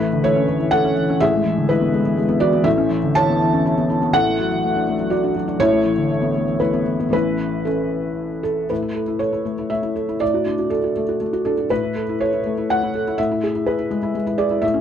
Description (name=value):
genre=neoclassical minimalist piano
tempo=122 BPM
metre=3/4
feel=rubato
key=A major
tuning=A4 = 438 Hz
part: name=felt-muted upright piano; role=solo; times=0.0-14.8 s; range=A1 to A5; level=-17 LUFS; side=equal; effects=none
room=light reverb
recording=dark, warm production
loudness=-17 LUFS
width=side -9 dB against mid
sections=0.0-8.7 A section; 8.7-14.8 B section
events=none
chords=0.0 Aadd9; 1.2 E/A; 2.7 Aadd9; 4.1 D/A; 5.6 Aadd9; 7.1 A; 10.2 D/A; 11.7 Aadd9; 13.2 E/A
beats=0.25 0.73 | 1.21 1.69 2.17 | 2.65 3.16 3.65 | 4.14 4.63 5.11 | 5.60 6.09 6.60 | 7.12 7.66 8.18 | 8.70 9.21 9.71 | 10.21 10.71 11.20 | 11.70 12.20 12.69 | 13.18 13.66 14.15 | 14.63